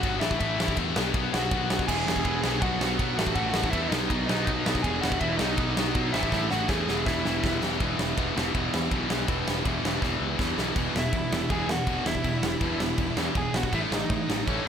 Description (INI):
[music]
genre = punk rock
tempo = 162 BPM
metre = 4/4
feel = straight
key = E major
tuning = A4 = 440 Hz
[part]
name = smooth overdriven lead guitar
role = melody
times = 0.0-7.6, 11.0-14.7 s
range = C#4 to G#5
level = -31 LUFS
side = equal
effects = digital delay
[part]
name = distorted electric guitar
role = riff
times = 0.0-14.7 s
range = E2 to B3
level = -32 LUFS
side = left 13 dB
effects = distortion
[part]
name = scooped high-gain guitar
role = riff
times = 0.0-14.7 s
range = E2 to B3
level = -33 LUFS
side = right 1 dB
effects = distortion
[part]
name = overdriven picked electric bass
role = bass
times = 0.0-14.6 s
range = E1 to B2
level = -33 LUFS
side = equal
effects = none
[part]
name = big rock drum kit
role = drums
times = 0.0-14.6 s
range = crash cymbal, kick drum, ride cymbal, snare drum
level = -29 LUFS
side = equal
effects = none
[part]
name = distorted electric guitar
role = riff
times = 1.9-14.7 s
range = E2 to B3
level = -32 LUFS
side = right 11 dB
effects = distortion
[sound]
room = little or no reverb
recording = none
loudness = -24 LUFS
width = side -8 dB against mid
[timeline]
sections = 0.0-7.8 A section; 7.8-10.8 B section; 10.8-14.7 C section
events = drum fill 6.3-7.8, 10.0-10.8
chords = 0.2 A5; 1.0 B5; 1.9 E; 2.4 B5; 3.2 A5; 3.9 B; 4.8 E; 5.4 B; 6.1 A5; 6.9 E; 7.8 E5; 10.8 E; 13.7 A